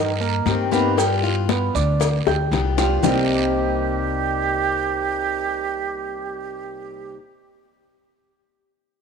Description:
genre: latin, Cuban son and guajira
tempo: 116 BPM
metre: 4/4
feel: straight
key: C minor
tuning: A4 = 440 Hz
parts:
  - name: warm concert grand piano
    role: arpeggios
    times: 0.0-7.1 s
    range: C3 to G6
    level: -25 LUFS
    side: right 8 dB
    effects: none
  - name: upright bass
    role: bass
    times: 0.0-7.1 s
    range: C2 to G2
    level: -24 LUFS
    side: left 1 dB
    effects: none
  - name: congas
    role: percussion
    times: 0.2-3.2 s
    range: none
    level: -27 LUFS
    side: left 14 dB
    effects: none
  - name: maracas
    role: percussion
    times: 0.2-3.2 s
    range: none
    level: -35 LUFS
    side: right 11 dB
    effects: none
  - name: picked steel-string acoustic guitar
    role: accompaniment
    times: 0.5-7.2 s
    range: C3 to G4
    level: -26 LUFS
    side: left 12 dB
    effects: none
  - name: cowbell and bongos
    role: percussion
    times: 0.5-3.2 s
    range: none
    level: -25 LUFS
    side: left 12 dB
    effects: none
  - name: guiro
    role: percussion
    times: 0.5-3.2 s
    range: none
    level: -33 LUFS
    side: right 10 dB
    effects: none
  - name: breathy jazz flute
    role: second line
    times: 3.0-7.2 s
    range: G4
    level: -25 LUFS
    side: right 8 dB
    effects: none
room: moderate plate reverb, RT60 3.0 s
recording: 1960s-style stereo with parts hard left and right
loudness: -19 LUFS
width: side -6 dB against mid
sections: 0.0-3.0 A section; 3.0-7.2 B section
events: drum fill 2.0-3.0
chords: 0.0 Cm7; 1.0 G7; 3.0 Cm7

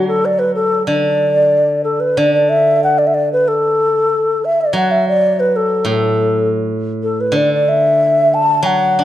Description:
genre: chinese traditional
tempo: 93 BPM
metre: 2/4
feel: rubato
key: D gong mode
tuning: A4 = 441 Hz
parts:
  - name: mellow xiao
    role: melody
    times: 0.0-9.0 s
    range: A4 to A5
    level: -13 LUFS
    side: left 1 dB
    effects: none
  - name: steel-string zither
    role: accompaniment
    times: 0.0-9.0 s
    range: A2 to D4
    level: -18 LUFS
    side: equal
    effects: none
room: moderate recital hall reverb, RT60 1.5 s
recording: dark, warm production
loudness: -12 LUFS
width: side -12 dB against mid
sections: 0.0-2.2 A section; 2.2-9.0 B section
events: none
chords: none

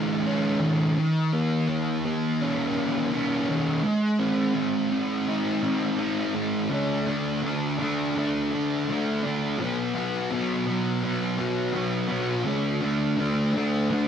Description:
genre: rock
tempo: 83 BPM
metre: 4/4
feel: straight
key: D major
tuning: A4 = 437 Hz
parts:
  - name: thick fuzz guitar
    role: solo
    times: 0.0-14.1 s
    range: B2 to E4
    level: -23 LUFS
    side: equal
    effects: distortion, lush chorus, slapback echo
room: light reverb, digital ambience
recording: dark, warm production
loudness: -23 LUFS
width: side -8 dB against mid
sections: 0.0-6.7 A section; 6.7-14.1 B section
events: none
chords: 0.0 Dsus2; 1.0 E5; 3.8 A; 6.7 D5; 9.6 B5; 12.5 D5

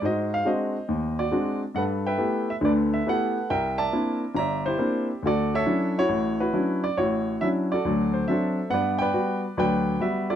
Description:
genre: solo jazz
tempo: 138 BPM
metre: 4/4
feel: swing 67% on 8ths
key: D major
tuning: A4 = 441 Hz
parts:
  - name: clear baby grand piano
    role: solo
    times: 0.0-10.4 s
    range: G1 to Bb5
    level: -22 LUFS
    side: equal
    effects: none
room: moderate club reverb, RT60 0.7 s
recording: dark, warm production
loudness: -22 LUFS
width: side -10 dB against mid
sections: 0.0-8.7 A section; 8.7-10.4 B section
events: none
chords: 0.0 G#7#11; 1.8 G69; 3.5 C9; 5.2 Dmaj9; 7.8 D7; 8.7 Gmaj7

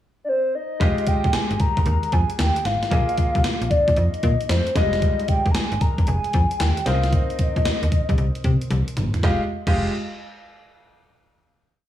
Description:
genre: R&B, new jack swing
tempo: 114 BPM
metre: 4/4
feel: swing 66% on 16ths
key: F minor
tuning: A4 = 440 Hz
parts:
  - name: hollow clarinet-like synth lead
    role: melody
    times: 0.2-9.9 s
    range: C5 to Bb5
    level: -24 LUFS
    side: left 2 dB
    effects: chorus
  - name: bright baby grand piano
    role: accompaniment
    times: 0.8-9.9 s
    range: G3 to Eb5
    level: -29 LUFS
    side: right 1 dB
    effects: none
  - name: slap-like FM bass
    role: bass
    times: 0.8-9.9 s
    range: F1 to C3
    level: -21 LUFS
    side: equal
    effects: none
  - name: gated 80s digital drum machine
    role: drums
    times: 0.8-9.8 s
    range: crash cymbal, handclaps, hi-hat, kick drum, snare drum, toms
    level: -22 LUFS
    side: equal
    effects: gated reverb, gated reverb snare
room: light reverb, digital ambience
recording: small room ambience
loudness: -18 LUFS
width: side -12 dB against mid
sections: 0.0-0.8 pickup bar; 0.8-9.2 verse; 9.2-11.3 final chord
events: drum fill 8.7-9.2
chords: 0.0 N.C.; 0.8 Fm9; 2.9 Bb7sus4; 4.8 Fm9; 6.9 Cm7; 9.2 Fm9

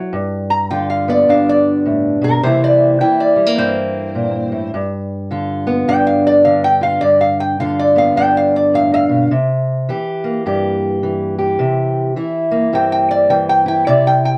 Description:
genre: acoustic country blues, solo or duo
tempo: 105 BPM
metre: 4/4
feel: swing 62% on 8ths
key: unclear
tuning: A4 = 440 Hz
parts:
  - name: fingerpicked steel-string acoustic guitar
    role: accompaniment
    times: 0.0-14.4 s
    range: G2 to G4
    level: -18 LUFS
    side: equal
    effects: none
  - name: lap resonator guitar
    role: melody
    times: 0.5-14.4 s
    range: Bb4 to Bb5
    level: -16 LUFS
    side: equal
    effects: none
room: moderate studio reverb, RT60 0.6 s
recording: dark, warm production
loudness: -15 LUFS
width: mono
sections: 0.1-14.4 A section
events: none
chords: 0.1 G7; 2.4 C7; 4.7 G7; 9.3 C7

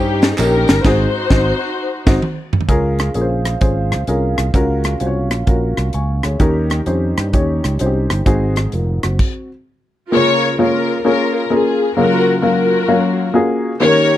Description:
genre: uptempo gospel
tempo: 130 BPM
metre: 4/4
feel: swing 66% on 8ths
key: Db major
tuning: A4 = 440 Hz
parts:
  - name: warm studio string section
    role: melody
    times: 0.0-2.2, 10.1-14.2 s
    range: Db4 to Db5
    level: -16 LUFS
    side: left 2 dB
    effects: none
  - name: dark upright piano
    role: accompaniment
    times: 0.0-14.2 s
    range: Ab2 to Db6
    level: -17 LUFS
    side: left 1 dB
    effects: none
  - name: fingered electric bass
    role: bass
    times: 0.0-9.2 s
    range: F1 to G2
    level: -18 LUFS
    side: right 1 dB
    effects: none
  - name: crisp fusion drum kit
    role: drums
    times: 0.2-9.3 s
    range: crash cymbal, hi-hat, kick drum, rim click, snare drum, toms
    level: -16 LUFS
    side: equal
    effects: none
  - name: tambourine and handclaps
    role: percussion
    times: 0.2-0.8 s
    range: none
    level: -29 LUFS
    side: right 5 dB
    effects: none
  - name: warm French horn section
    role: sustained chords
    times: 2.7-9.2 s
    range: Gb3 to F5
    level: -29 LUFS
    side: right 6 dB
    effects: stereo widening
room: little or no reverb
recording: dry, close 1970s-style studio recording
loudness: -13 LUFS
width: side -13 dB against mid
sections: 0.0-2.7 A section; 2.7-10.1 B section; 10.1-14.2 A section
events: band accent 0.8-2.7; drum fill 1.8-2.7; stop 9.2-10.1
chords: 0.0 Eb7; 0.8 Ab7; 2.7 Db6; 4.5 Gbmaj7; 6.4 Eb7; 8.3 Ab7; 10.1 Db6; 12.0 Gbmaj7/Db

